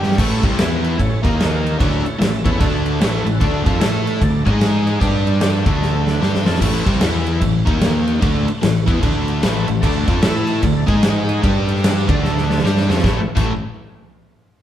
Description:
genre	blues rock power trio and southern rock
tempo	150 BPM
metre	4/4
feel	swing 62% on 8ths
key	A mixolydian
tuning	A4 = 440 Hz
part	crunchy overdriven guitar	riff	0.0-13.5 s	G2 to A4	-19 LUFS	equal	none
part	fuzz fingered electric bass	bass	0.0-13.6 s	A1 to A2	-21 LUFS	equal	overdrive
part	big rock drum kit	drums	0.0-13.4 s	crash cymbal, kick drum, snare drum	-19 LUFS	equal	none
part	overdriven tonewheel organ	sustained chords	0.2-6.6, 9.8-13.3 s	G3 to A5	-28 LUFS	right 2 dB	chorus vibrato, slow rotary speaker
room	wet stone room reverb, RT60 1.3 s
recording	band playing live in one room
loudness	-15 LUFS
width	side -11 dB against mid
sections	0.2-6.6 A section; 6.6-13.0 A section; 13.0-14.6 B section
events	drum fill 0.0, 5.8-6.6, 12.2-13.0; tonewheel organ fill 5.8-6.6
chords	0.2 A; 0.6 E5; 1.0 A; 1.2 D#5; 1.8 A; 2.6 D5; 3.0 A; 3.4 D5; 3.8 A5; 4.2 D5; 4.4 G#5; 5.0 G5; 5.6 D5; 6.6 A5; 7.0 E5; 7.4 A5; 7.6 D#5; 8.2 A5; 9.0 D5; 9.4 A5; 9.8 D5; 10.2 A5; 10.6 D5; 10.8 G#5; 11.4 G5; 12.0 D5; 13.0 A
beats	| 0.18 0.58 0.98 1.39 | 1.79 2.20 2.60 3.00 | 3.40 3.81 4.21 4.61 | 5.02 5.42 5.82 6.22 | 6.62 7.03 7.43 7.83 | 8.23 8.63 9.03 9.43 | 9.83 10.23 10.63 11.03 | 11.44 11.84 12.24 12.64 | 13.04 13.44

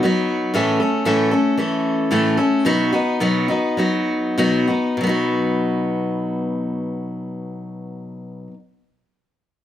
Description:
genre	country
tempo	94-117 BPM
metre	4/4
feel	straight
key	B mixolydian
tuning	A4 = 440 Hz
part	picked steel-string acoustic guitar	solo	0.0-8.6 s	A2 to A4	-18 LUFS	left 1 dB	none
room	moderate large studio reverb, RT60 1.0 s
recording	none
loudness	-17 LUFS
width	side -11 dB against mid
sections	0.5-5.0 A section; 5.0-9.6 B section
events	slowing down 0.5-5.0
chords	0.0 B; 0.5 A; 2.7 B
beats	0.04 | 0.55 1.06 1.58 2.11 | 2.65 3.21 3.78 4.38 | 5.01 5.65 6.29 6.93 | 7.57 8.21

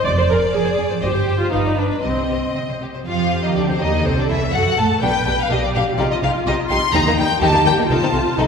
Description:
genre	quick classical-period movement for string orchestra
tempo	124 BPM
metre	2/4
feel	rubato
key	C minor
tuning	A4 = 440 Hz
part	clear symphonic violin section	second line	0.0-8.4 s	G3 to Eb5	-23 LUFS	left 3 dB	none
part	warm symphonic viola section	accompaniment	0.0-8.5 s	C4 to D5	-22 LUFS	right 1 dB	none
part	warm studio violin section	melody	0.1-8.4 s	G4 to C6	-21 LUFS	left 4 dB	none
part	rich symphonic cello section	bass	0.1-8.4 s	F2 to A3	-24 LUFS	right 1 dB	none
part	rich symphonic double bass section	bass	0.1-8.4 s	F1 to A2	-23 LUFS	right 2 dB	none
room	wet scoring stage reverb, RT60 1.6 s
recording	heard from further back in the room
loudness	-16 LUFS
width	side -6 dB against mid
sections	0.0-3.1 A section; 3.1-8.5 A section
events	none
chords	0.1 Ddim/F; 1.0 C5/G; 1.5 G; 2.0 Cm; 4.1 D7/C; 5.0 G/B; 6.0 Cm; 6.9 Eb; 7.9 Adim/C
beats	| 0.05 0.53 | 1.03 1.53 | 2.04 2.55 | 3.07 3.57 | 4.05 4.54 | 5.02 5.50 | 5.98 6.46 | 6.93 7.41 | 7.89 8.38

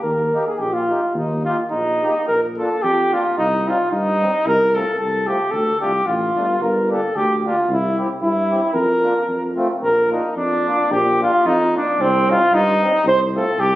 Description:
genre	alpine folk, alpine dance band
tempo	112 BPM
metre	2/4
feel	swing 55% on 8ths, rubato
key	Bb major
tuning	A4 = 441 Hz
part	mellow flugelhorn	melody	0.0-13.8 s	C4 to C5	-17 LUFS	equal	none
part	mellow tuba	bass	0.0-13.8 s	G1 to G2	-24 LUFS	equal	none
part	mellow accordion	accompaniment	0.3-13.5 s	G3 to G4	-26 LUFS	left 1 dB	none
room	wet recital hall reverb, RT60 1.4 s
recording	recorded on a phone in the room, studio reverb, compression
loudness	-16 LUFS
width	side -15 dB against mid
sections	0.0-2.3 A section; 2.3-10.9 B section; 10.9-13.8 B section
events	none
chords	0.0 Eb; 2.3 Bb; 3.4 Cm; 4.5 F/C; 5.5 Dm; 6.6 Gm; 7.7 C; 8.8 Bb/F; 9.3 F; 9.8 Bb; 12.0 Cm; 13.1 F/C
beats	| 0.03 0.59 | 1.15 1.71 | 2.28 2.83 | 3.37 3.92 | 4.45 4.98 | 5.52 6.05 | 6.60 7.15 | 7.69 8.22 | 8.75 9.28 | 9.82 10.36 | 10.91 11.45 | 11.99 12.52 | 13.05 13.59

